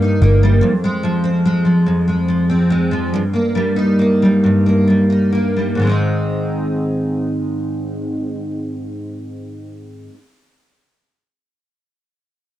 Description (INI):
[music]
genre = six-eight pop ballad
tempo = 43-49 BPM (dotted quarters)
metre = 6/8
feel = straight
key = Ab major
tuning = A4 = 440 Hz
[part]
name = picked steel-string acoustic guitar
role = accompaniment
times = 0.0-10.1 s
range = F2 to Eb4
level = -15 LUFS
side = equal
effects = double-tracked left and right, cassette tape
[part]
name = vintage muted fingered electric bass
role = bass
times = 0.0-0.6 s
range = G1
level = -11 LUFS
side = equal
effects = none
[sound]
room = moderate spring reverb, RT60 1.3 s, studio reverb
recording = home recording on cassette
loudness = -14 LUFS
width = side -13 dB against mid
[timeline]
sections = 0.0-5.8 A section; 5.8-8.6 B section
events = slowing down 0.6-5.8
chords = 0.0 Eb/G; 0.6 Fm; 3.1 Eb/G; 5.8 Ab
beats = | 0.62 1.85 | 3.12 4.42 | 5.79 7.19